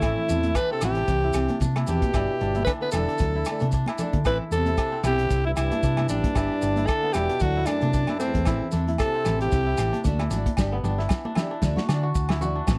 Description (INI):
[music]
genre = highlife guitar band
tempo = 114 BPM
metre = 4/4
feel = swing 55% on 16ths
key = G major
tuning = A4 = 440 Hz
[part]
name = raspy alto saxophone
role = melody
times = 0.0-10.0 s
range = C4 to B4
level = -28 LUFS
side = equal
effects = none
[part]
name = breathy trombone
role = second line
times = 0.0-10.0 s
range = E2 to E3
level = -37 LUFS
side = equal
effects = none
[part]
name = picked steel-string acoustic guitar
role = accompaniment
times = 0.0-12.8 s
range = E3 to A4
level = -35 LUFS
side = equal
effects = none
[part]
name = kora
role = arpeggios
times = 0.0-12.8 s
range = A3 to F#4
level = -35 LUFS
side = equal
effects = none
[part]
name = hollow-body short-scale fingered electric bass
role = bass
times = 0.0-12.8 s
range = E1 to D3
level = -28 LUFS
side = equal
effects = none
[part]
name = warm soul drum kit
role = drums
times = 0.0-12.8 s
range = hi-hat, kick drum, rim click, snare drum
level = -29 LUFS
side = equal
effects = none
[part]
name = agogo bells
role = percussion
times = 0.0-12.8 s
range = none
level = -40 LUFS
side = equal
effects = none
[part]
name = maracas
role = percussion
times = 0.0-12.8 s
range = none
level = -45 LUFS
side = equal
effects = none
[part]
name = congas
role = percussion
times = 0.3-12.5 s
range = none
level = -36 LUFS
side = equal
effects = none
[sound]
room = little or no reverb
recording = none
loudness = -24 LUFS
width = mono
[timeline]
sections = 0.0-10.6 A section; 10.6-12.8 B section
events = none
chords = 0.0 Am; 1.1 C; 2.1 G; 3.2 D; 4.3 Am; 5.3 C; 6.4 G; 7.4 D; 8.5 Am; 9.5 C; 10.1 D; 10.6 G; 11.6 D